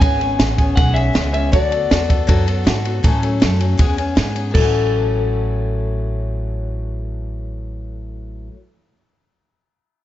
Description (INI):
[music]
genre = rockabilly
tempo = 159 BPM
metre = 4/4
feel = straight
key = A major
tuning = A4 = 440 Hz
[part]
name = electric guitar through a small old amp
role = melody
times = 0.0-8.5 s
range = A4 to G#5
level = -22 LUFS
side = left 4 dB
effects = analog delay
[part]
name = picked steel-string acoustic guitar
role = accompaniment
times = 0.0-8.6 s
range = A2 to A4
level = -24 LUFS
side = left 4 dB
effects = none
[part]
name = upright bass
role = bass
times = 0.0-8.5 s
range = G#1 to A2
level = -20 LUFS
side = right 1 dB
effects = none
[part]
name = compact cocktail drum kit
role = drums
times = 0.0-4.6 s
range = crash cymbal, kick drum, ride cymbal, snare drum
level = -17 LUFS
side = right 1 dB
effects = none
[sound]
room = small room ambience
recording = nothing above 7.7 kHz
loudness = -15 LUFS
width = side -13 dB against mid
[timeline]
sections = 0.0-4.5 A section; 4.5-7.6 B section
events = none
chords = 0.0 E6; 1.5 D6; 3.0 A6; 3.8 E6; 4.5 A6